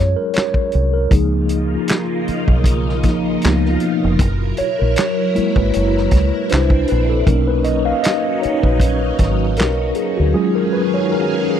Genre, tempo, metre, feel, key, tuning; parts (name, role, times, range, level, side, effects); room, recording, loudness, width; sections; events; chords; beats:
R&B, neo-soul; 78 BPM; 4/4; swing 54% on 16ths; Db mixolydian; A4 = 440 Hz
mellow tine electric piano; accompaniment; 0.0-11.6 s; F3 to F5; -18 LUFS; left 1 dB; medium stereo tremolo
deep dub fingered electric bass; bass; 0.0-10.3 s; F1 to Gb2; -18 LUFS; equal
warm soul drum kit; drums; 0.3-10.1 s; handclaps, hi-hat, kick drum, snare drum; -17 LUFS; equal
phased string machine; sustained chords; 1.1-11.6 s; Cb3 to F5; -22 LUFS; right 1 dB; ensemble chorus, phaser
studio reverb; dry, close 1970s-style studio recording; -14 LUFS; side -9 dB against mid
0.0-11.6 A section
tine electric piano solo 0.0-11.6; silent gap 10.3-11.6
0.0 Ebm11 (rootless); 1.1 Db69; 3.4 Db13; 4.2 Gb7; 6.5 Cmaj9; 7.3 Cbmaj9; 10.3 Ebm11
0.34 | 1.11 1.88 2.65 3.42 | 4.19 4.96 5.73 6.50 | 7.27 8.04 8.81 9.57 | 10.34 11.11